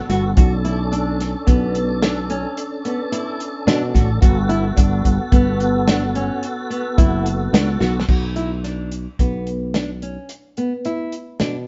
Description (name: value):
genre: progressive instrumental, band music in an uneven meter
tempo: 109 BPM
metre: 7/4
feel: straight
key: B minor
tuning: A4 = 440 Hz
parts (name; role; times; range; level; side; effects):
- tonewheel organ; accompaniment; 0.0-8.1 s; B3 to A4; -28 LUFS; equal; overdrive, chorus vibrato, slow rotary speaker
- nylon-string guitar; arpeggios; 0.1-11.5 s; B3 to F#4; -26 LUFS; equal; none
- sustaining fretless electric bass; bass; 0.1-11.6 s; F#1 to B2; -24 LUFS; equal; none
- warm soul drum kit; drums; 0.1-11.5 s; crash cymbal, hi-hat, kick drum, snare drum; -19 LUFS; equal; none
room: light reverb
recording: band playing live in one room, nothing above 7.7 kHz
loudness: -19 LUFS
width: mono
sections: 0.0-8.1 A section; 8.1-11.7 B section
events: drum fill 7.8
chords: 0.4 Bm7; 4.2 Gmaj7; 8.1 Bm